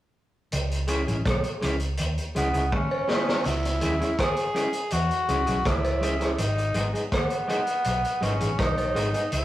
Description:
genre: roots reggae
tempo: 82 BPM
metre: 4/4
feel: straight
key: C# minor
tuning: A4 = 440 Hz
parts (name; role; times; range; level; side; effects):
- vintage muted fingered electric bass; bass; 0.5-9.4 s; G#1 to E2; -28 LUFS; equal; none
- vintage drum kit; drums; 0.5-9.4 s; hi-hat, kick drum, rim click, snare drum; -28 LUFS; equal; tape echo
- electric guitar at the edge of break-up; accompaniment; 0.9-9.2 s; G#3 to G#4; -28 LUFS; equal; none
- cowbell and jawbone-type rattle; percussion; 1.3-8.9 s; none; -33 LUFS; right 1 dB; none
- raspy tenor saxophone; melody; 2.4-9.4 s; B3 to G#4; -27 LUFS; equal; none
room: moderate booth ambience, RT60 0.2 s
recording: rough rehearsal-room recording, warm saturation, studio reverb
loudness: -23 LUFS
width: side -14 dB against mid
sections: 0.5-3.5 A section; 3.5-9.4 B section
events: drum fill 2.7-3.5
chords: 0.5 C#m; 6.4 G#m

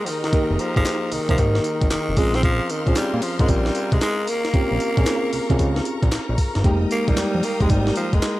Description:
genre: R&B, new jack swing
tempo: 114 BPM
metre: 4/4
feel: swing 66% on 16ths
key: F minor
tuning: A4 = 440 Hz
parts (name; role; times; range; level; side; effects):
- breathy tenor saxophone; melody; 0.0-8.4 s; Eb3 to C4; -24 LUFS; equal; slapback echo
- FM electric piano with auto-pan; accompaniment; 0.0-8.4 s; G3 to Bb4; -25 LUFS; right 1 dB; none
- warm studio string section; sustained chords; 0.0-8.4 s; Bb4 to Eb6; -32 LUFS; left 1 dB; none
- breakbeat sampler-style drum kit; drums; 0.1-8.4 s; handclaps, hi-hat, kick drum, snare drum, tambourine; -22 LUFS; equal; vintage 12-bit sampler grit
- fat analog bass; bass; 0.5-8.2 s; F1 to Bb2; -23 LUFS; equal; none
- group handclap; percussion; 0.9-8.4 s; none; -38 LUFS; left 2 dB; none
room: little or no reverb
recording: none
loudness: -18 LUFS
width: side -17 dB against mid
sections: 0.0-8.4 A section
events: none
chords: 0.0 Fm11; 2.2 Bbm9; 6.6 Fm11

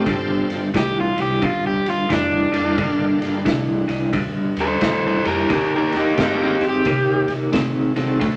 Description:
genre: electric blues shuffle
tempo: 88 BPM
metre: 4/4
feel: swing 63% on 8ths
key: G minor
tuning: A4 = 440 Hz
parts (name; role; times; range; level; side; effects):
- bright tonewheel organ; accompaniment; 0.0-8.4 s; A3 to F5; -30 LUFS; equal; slow rotary speaker, overdrive, chorus vibrato
- electric guitar through a small old amp; riff; 0.0-8.4 s; G2 to C4; -24 LUFS; equal; tremolo
- upright bass; bass; 0.0-8.4 s; G1 to C3; -33 LUFS; equal; none
- raw garage drum kit; drums; 0.1-8.4 s; kick drum, ride cymbal, snare drum; -29 LUFS; equal; none
- crunchy overdriven guitar; melody; 0.8-7.3 s; D4 to C5; -23 LUFS; equal; none
room: moderate club reverb, RT60 0.7 s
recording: none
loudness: -20 LUFS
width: mono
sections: 0.0-8.4 A section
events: overdriven electric guitar solo 0.0-8.4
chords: 0.1 Gm9; 5.5 Ebmaj7

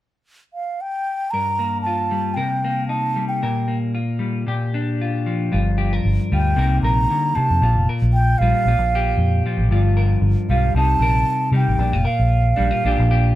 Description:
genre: highlife guitar band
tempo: 115 BPM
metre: 4/4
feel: swing 53% on 16ths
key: G minor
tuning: A4 = 440 Hz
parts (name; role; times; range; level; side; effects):
- mellow hollow baroque flute; melody; 0.5-13.4 s; F5 to Bb5; -22 LUFS; right 2 dB; none
- clean electric guitar; accompaniment; 1.3-13.4 s; G2 to Bb4; -22 LUFS; left 2 dB; lush chorus
- vintage muted fingered electric bass; bass; 5.5-13.3 s; F1 to C3; -18 LUFS; equal; none
room: light reverb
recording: none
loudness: -17 LUFS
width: side -14 dB against mid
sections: 0.0-1.3 A section; 1.3-5.5 B section; 5.5-13.4 C section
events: none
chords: 0.0 N.C.; 1.3 Gm7; 2.4 Cm7; 3.4 Gm7/Bb; 4.5 Bb6; 5.5 Gm7; 6.6 Cm7; 7.6 Gm7; 8.7 Bb5; 9.7 Gm7; 10.8 Cm7; 11.8 Gm7; 12.8 Bb6

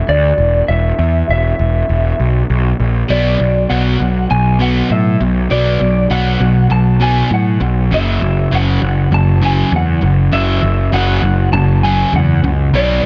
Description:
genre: post-rock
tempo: 100 BPM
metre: 4/4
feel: straight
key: B dorian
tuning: A4 = 440 Hz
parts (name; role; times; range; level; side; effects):
- electric slide guitar; melody; 0.0-13.1 s; D5 to A5; -21 LUFS; equal; analog delay
- fuzz picked electric bass; bass; 0.1-13.1 s; E1 to A2; -16 LUFS; equal; overdrive
- crunchy overdriven guitar; riff; 3.1-13.0 s; F#2 to B3; -18 LUFS; equal; none
room: light reverb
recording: nothing above 7.7 kHz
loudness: -14 LUFS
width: mono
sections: 0.0-3.1 A section; 3.1-13.1 B section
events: build-up 3.1-13.1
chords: 0.0 E5; 3.1 Bm; 7.9 F#5

